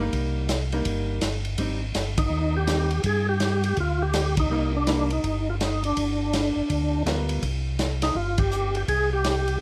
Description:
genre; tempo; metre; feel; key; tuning
soul jazz organ trio; 164 BPM; 4/4; swing 64% on 8ths; C minor; A4 = 440 Hz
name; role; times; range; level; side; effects
vintage hollow-body jazz guitar; accompaniment; 0.0-7.4 s; G3 to A#4; -32 LUFS; equal; none
mellow tonewheel organ; bass; 0.0-9.6 s; G1 to G2; -29 LUFS; equal; chorus vibrato, slow rotary speaker
vintage drum kit; drums; 0.1-9.5 s; hi-hat, kick drum, ride cymbal, snare drum; -31 LUFS; equal; none
percussive tonewheel organ; melody; 2.2-9.6 s; D4 to Ab4; -28 LUFS; equal; slow rotary speaker, overdrive, chorus vibrato
room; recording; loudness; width
light reverb; none; -25 LUFS; mono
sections
0.0-7.4 A section; 7.4-9.6 A section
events
band accent 2.1, 4.3, 8.3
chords
0.0 Cm7; 1.6 Abmaj7; 3.0 G5; 4.5 Cm7; 6.0 G7#9; 7.4 C5

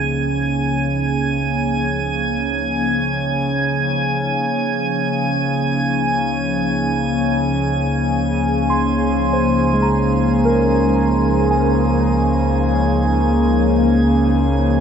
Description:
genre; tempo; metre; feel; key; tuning
ambient; free time; none; none; unclear; A4 = 440 Hz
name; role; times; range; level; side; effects
warbly tape-like pad; sustained chords; 0.0-14.8 s; F3 to Ab4; -20 LUFS; left 2 dB; chorus, built-in reverb, phaser, shimmer reverb
warm sub bass; bass; 0.0-14.8 s; Db2; -24 LUFS; equal; none
analog drone; drone; 0.0-14.8 s; Db3; -22 LUFS; right 1 dB; chorus
drifting glass-harmonics texture; texture; 0.0-14.8 s; Ab5; -23 LUFS; right 2 dB; chorus, built-in reverb, shimmer reverb
muted felt-like synth keys; arpeggios; 8.7-14.8 s; Ab3 to C6; -21 LUFS; right 2 dB; chorus, tape echo, shimmer reverb
room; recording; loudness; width
wet huge ambient reverb, RT60 8.7 s; none; -15 LUFS; side -7 dB against mid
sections
0.0-14.8 A section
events
fade-in on sub bass 0.0-14.8; filter sweep on ambient pad 0.0-14.8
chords
0.0 Dbsus2; 4.4 Absus4/Db

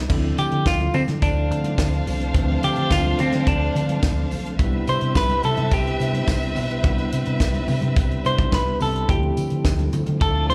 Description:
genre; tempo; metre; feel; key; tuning
disco; 107 BPM; 4/4; straight; D dorian; A4 = 440 Hz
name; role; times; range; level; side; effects
tine electric piano; accompaniment; 0.0-10.5 s; E3 to G4; -32 LUFS; equal; medium tremolo
percussive tonewheel organ; sustained chords; 0.0-10.5 s; C3 to B4; -36 LUFS; equal; overdrive, chorus vibrato, slow rotary speaker
fingered electric bass; bass; 0.0-10.5 s; B1 to D3; -26 LUFS; equal; none
tight funk drum kit; drums; 0.1-10.5 s; crash cymbal, hi-hat, kick drum, snare drum; -25 LUFS; equal; none
congas; percussion; 0.1-10.5 s; none; -36 LUFS; equal; none
tambourine; percussion; 0.1-10.5 s; none; -48 LUFS; equal; none
semi-hollow electric guitar; melody; 0.4-10.5 s; C4 to C5; -26 LUFS; equal; tremolo, slapback echo
rich studio violin section; second line; 1.2-10.5 s; A3 to F5; -32 LUFS; equal; slapback echo, tape echo
room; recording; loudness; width
small room ambience; live gig heard through the venue's PA, club reverb; -21 LUFS; mono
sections
0.1-10.5 A section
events
clean electric guitar solo 0.1-10.5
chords
0.1 Dm7; 4.6 Cmaj7; 9.1 Dm7

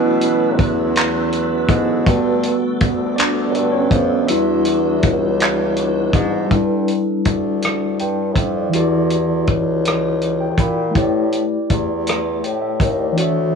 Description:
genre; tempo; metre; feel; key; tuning
slow six-eight R&B; 54 BPM (dotted quarters); 6/8; straight; E dorian; A4 = 439 Hz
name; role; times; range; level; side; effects
mellow tine electric piano; accompaniment; 0.0-13.6 s; E3 to B5; -19 LUFS; left 1 dB; medium stereo tremolo
tonewheel organ; sustained chords; 0.0-6.5 s; D3 to B4; -24 LUFS; right 1 dB; overdrive, chorus vibrato, slow rotary speaker
clear bassoon; bass; 0.0-13.6 s; C#2 to B2; -21 LUFS; equal; tube saturation
warm soul drum kit; drums; 0.2-13.3 s; handclaps, hi-hat, kick drum, rim click; -19 LUFS; equal; none
room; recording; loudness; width
light reverb, small room ambience; worn, warbling old tape, cassette tape, warbly pitch drift; -15 LUFS; side -5 dB against mid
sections
0.0-6.5 A section; 6.5-13.6 B section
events
tine electric piano solo 0.0-6.5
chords
0.0 B7sus4; 2.1 Gmaj9; 4.3 Em9; 6.5 G6; 8.7 Em11; 11.0 A7sus4

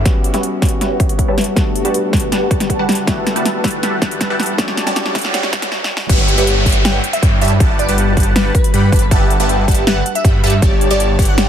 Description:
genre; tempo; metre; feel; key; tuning
future bass; 159 BPM; 4/4; half-time; G lydian; A4 = 440 Hz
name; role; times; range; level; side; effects
felt-muted upright piano; accompaniment; 0.0-6.1 s; G3 to F#4; -25 LUFS; left 3 dB; sidechain pumping, ping-pong delay
ethereal airy pad; sustained chords; 0.0-11.5 s; G3 to F#5; -28 LUFS; right 2 dB; none
wide detuned saw bass; bass; 0.0, 6.1-11.5 s; G1 to G2; -17 LUFS; equal; chorus, sidechain pumping
noise sweep, riser and downlifter; sound effects; 0.0-9.1 s; none; -25 LUFS; right 1 dB; none
supersaw stab; riff; 0.1-11.5 s; G3 to B5; -19 LUFS; equal; phaser, sidechain pumping, low-pass filter, ping-pong delay
big-room dance drum kit; drums; 0.1-11.5 s; crash cymbal, hi-hat, snare drum; -20 LUFS; equal; overdrive, small room ambience
electronic kick drum; drums; 0.1-11.3 s; none; -15 LUFS; equal; overdrive, small room ambience
glassy wavetable pluck; melody; 6.8-11.5 s; B4 to G5; -23 LUFS; right 1 dB; chorus, sidechain pumping, ping-pong delay
room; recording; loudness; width
little or no reverb; dense, heavily limited modern master, high-pass filter; -12 LUFS; side -9 dB against mid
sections
0.1-6.1 A section; 6.1-11.5 B section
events
build-up 0.1-6.1; drum fill 0.1-5.7, 5.7-6.1; filter sweep on supersaw synth 0.1-6.1; filter sweep 0.1-6.1; noise sweep 4.7-6.1; stop 5.7-6.1; drop 6.1-11.5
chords
0.1 A13/G; 1.6 Gmaj9; 3.1 Gmaj13; 4.6 Bm7/G; 6.1 A13/G; 7.6 Gmaj9; 9.1 D69/G; 10.6 Bm7/G

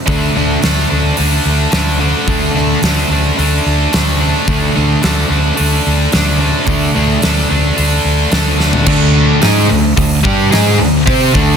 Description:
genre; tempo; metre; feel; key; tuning
hard rock; 109 BPM; 4/4; straight; unclear; A4 = 438 Hz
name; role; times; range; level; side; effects
overdriven semi-hollow guitar; riff; 0.1-11.6 s; D3 to C5; -17 LUFS; right 12 dB; none
sludgy distorted guitar; riff; 0.1-11.6 s; D3 to C5; -17 LUFS; left 10 dB; overdrive
tight distorted guitar; riff; 0.1-11.6 s; D3 to C5; -15 LUFS; equal; distortion
hollow-body short-scale fingered electric bass; bass; 0.1-11.6 s; D2 to C3; -16 LUFS; left 1 dB; none
huge arena drum kit; drums; 0.1-11.5 s; crash cymbal, hi-hat, kick drum, snare drum, toms; -16 LUFS; right 1 dB; none
room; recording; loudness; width
light reverb; dense, heavily limited modern master; -10 LUFS; side -7 dB against mid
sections
0.0-8.9 A section; 8.9-11.6 B section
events
drum fill 8.6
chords
0.0 D5

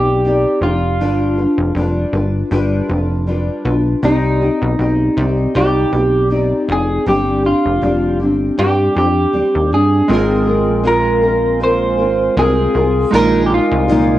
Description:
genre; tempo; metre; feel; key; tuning
indie pop; 79 BPM; 4/4; swing 55% on 16ths; unclear; A4 = 440 Hz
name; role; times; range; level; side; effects
electric guitar through a small old amp; melody; 0.0-14.2 s; Eb4 to C5; -17 LUFS; right 1 dB; wide subtle chorus, cassette tape, plate reverb
nylon-string guitar; accompaniment; 0.0-14.2 s; Bb2 to D5; -17 LUFS; left 1 dB; lush chorus, warbly pitch drift, cassette tape, plate reverb
plucky analog bass; bass; 0.0-14.2 s; F1 to G2; -18 LUFS; equal; none
warm analog keys; accompaniment; 10.1-14.2 s; Ab3 to Bb4; -19 LUFS; right 3 dB; chorus, cassette tape, plate reverb
warbly tape-like pad; sustained chords; 10.1-14.2 s; Bb4 to Eb6; -28 LUFS; left 1 dB; chorus, built-in reverb, cassette tape
room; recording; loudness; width
moderate studio reverb, RT60 0.6 s; home recording on cassette; -13 LUFS; side -14 dB against mid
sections
0.0-10.1 A section; 10.1-14.2 B section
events
none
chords
0.0 Cmadd9; 1.0 G7; 4.0 Cmadd9; 7.1 Gsus4; 10.1 Ab69; 13.1 Bb7sus4

